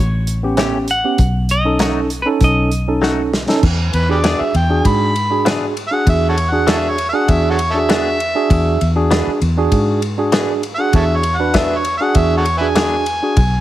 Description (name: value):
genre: straight-eighth soul blues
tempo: 98 BPM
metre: 4/4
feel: straight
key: E mixolydian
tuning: A4 = 440 Hz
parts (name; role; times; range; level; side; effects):
- semi-hollow electric guitar; melody; 0.0-3.3 s; B4 to F#5; -20 LUFS; equal; slapback echo
- vintage muted fingered electric bass; bass; 0.0-13.6 s; A1 to G#2; -18 LUFS; equal; none
- warm soul drum kit; drums; 0.3-13.5 s; crash cymbal, hi-hat, kick drum, ride cymbal, snare drum; -20 LUFS; equal; none
- tine electric piano; accompaniment; 0.4-13.4 s; B3 to B4; -19 LUFS; right 3 dB; slow stereo tremolo
- direct-recorded clean electric guitar; stabs; 0.6-13.0 s; E3 to G#4; -23 LUFS; left 5 dB; phaser
- overdriven harmonica; second line; 3.9-13.6 s; F#4 to B5; -19 LUFS; equal; none
room: light reverb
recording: none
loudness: -13 LUFS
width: side -14 dB against mid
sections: 0.0-3.6 A section; 3.6-13.6 B section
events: drum fill 3.0-3.6; harmonica solo 3.6-13.6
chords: 0.0 A7; 1.2 B7; 3.6 E7